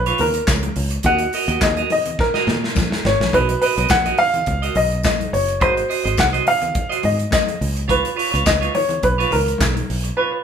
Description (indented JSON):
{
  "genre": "disco",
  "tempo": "105 BPM",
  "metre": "4/4",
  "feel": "straight",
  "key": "unclear",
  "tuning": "A4 = 440 Hz",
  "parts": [
    { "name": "dark baby grand piano", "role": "melody", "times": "0.0-10.4 s", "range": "Bb4 to Gb5", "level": "-20 LUFS", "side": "left 1 dB", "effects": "none" },
    { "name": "fingered electric bass", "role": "bass", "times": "0.0-10.1 s", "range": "F#1 to Bb2", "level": "-22 LUFS", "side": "equal", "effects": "none" },
    { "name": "clean electric guitar", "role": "accompaniment", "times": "0.1-10.4 s", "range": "F4 to Eb5", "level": "-23 LUFS", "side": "right 6 dB", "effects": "spring reverb" },
    { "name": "modern studio drum kit", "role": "drums", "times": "0.1-10.2 s", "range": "handclaps, hi-hat, kick drum, snare drum", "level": "-23 LUFS", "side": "equal", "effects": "none" },
    { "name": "congas", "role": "percussion", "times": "0.2-9.9 s", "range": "none", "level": "-30 LUFS", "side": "left 3 dB", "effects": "none" },
    { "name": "tambourine", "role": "percussion", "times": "0.5-9.7 s", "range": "none", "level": "-32 LUFS", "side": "left 6 dB", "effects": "none" }
  ],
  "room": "moderate large studio reverb, RT60 0.9 s",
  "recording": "band playing live in one room",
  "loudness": "-16 LUFS",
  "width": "side -7 dB against mid",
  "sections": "0.0-10.4 A section",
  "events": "drum fill 2.2-3.3",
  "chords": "0.0 Db7; 1.0 Ebm; 3.3 Bmaj7; 5.6 Ab7; 7.6 Db7"
}